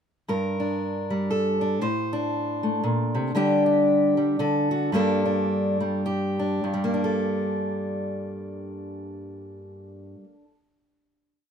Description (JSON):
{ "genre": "folk, solo fingerstyle acoustic guitar", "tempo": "98-118 BPM", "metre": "3/4", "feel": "swing 59% on 8ths", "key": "G minor", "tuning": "A4 = 440 Hz", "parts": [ { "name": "fingerpicked steel-string acoustic guitar", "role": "solo", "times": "0.3-10.5 s", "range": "G2 to C5", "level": "-23 LUFS", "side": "equal", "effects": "none" } ], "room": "light reverb", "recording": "close, detailed microphones", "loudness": "-22 LUFS", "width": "side -7 dB against mid", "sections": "0.3-6.6 A section; 6.6-10.3 final chord", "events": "slowing down 3.4-6.6", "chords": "0.3 Gm; 1.8 Amadd11; 3.4 Dsus4; 4.4 D; 4.9 Gmadd9" }